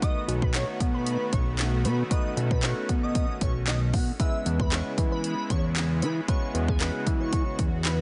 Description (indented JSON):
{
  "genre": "dance-pop",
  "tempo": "115 BPM",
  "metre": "4/4",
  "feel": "straight",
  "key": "E major",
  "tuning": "A4 = 436 Hz",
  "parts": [
    { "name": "airy dreamy lead", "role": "melody", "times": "0.0-8.0 s", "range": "G#4 to F#5", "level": "-38 LUFS", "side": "equal", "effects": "chorus" },
    { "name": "barky tine electric piano", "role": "accompaniment", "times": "0.0-7.7 s", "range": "G#3 to C#5", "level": "-37 LUFS", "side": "equal", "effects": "phaser, sidechain pumping" },
    { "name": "soft supersaw", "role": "sustained chords", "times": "0.0-8.0 s", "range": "C#3 to F#4", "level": "-39 LUFS", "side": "equal", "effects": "sidechain pumping" },
    { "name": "house drum kit", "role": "drums", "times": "0.0-8.0 s", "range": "handclaps, hi-hat, kick drum, snare drum", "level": "-29 LUFS", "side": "equal", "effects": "overdrive" },
    { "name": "fat analog bass", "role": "bass", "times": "0.3-8.0 s", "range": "B1 to E3", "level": "-29 LUFS", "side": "equal", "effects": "sidechain pumping" }
  ],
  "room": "digital ambience",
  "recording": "nothing above 10.3 kHz",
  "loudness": "-26 LUFS",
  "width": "mono",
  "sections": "0.0-8.0 A section",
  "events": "none",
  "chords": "0.0 B7; 4.2 E6",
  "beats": "| 0.02 0.55 1.07 1.59 | 2.11 2.63 3.15 3.68 | 4.20 4.72 5.24 5.76 | 6.29 6.81 7.33 7.85"
}